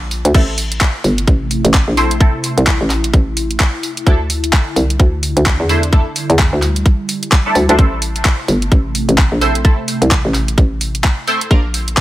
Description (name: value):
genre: bass house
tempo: 129 BPM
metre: 4/4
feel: swing 60% on 16ths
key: A phrygian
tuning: A4 = 440 Hz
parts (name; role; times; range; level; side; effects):
- sweeping resonant pad; sustained chords; 0.0-12.0 s; C3 to F4; -24 LUFS; left 1 dB; chorus, sidechain pumping
- hollow knocking FM bass; bass; 0.0-12.0 s; G1 to E2; -16 LUFS; equal; overdrive, sidechain pumping
- garage drum kit; drums; 0.1-12.0 s; crash cymbal, handclaps, hi-hat; -18 LUFS; equal; overdrive
- band-passed chord stab; stabs; 0.3-11.6 s; A3 to C5; -20 LUFS; right 1 dB; phaser, ensemble chorus, sidechain pumping, tape echo
- electronic kick drum; drums; 0.3-12.0 s; none; -11 LUFS; equal; overdrive
room: little or no reverb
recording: none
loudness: -12 LUFS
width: side -15 dB against mid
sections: 0.0-12.0 A section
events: none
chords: 0.3 Am; 4.1 Dsus2; 7.8 Am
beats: | 0.34 0.81 1.27 1.74 | 2.21 2.67 3.13 3.60 | 4.07 4.53 5.00 5.46 | 5.93 6.39 6.86 7.32 | 7.79 8.25 8.72 9.18 | 9.65 10.11 10.58 11.04 | 11.51 11.97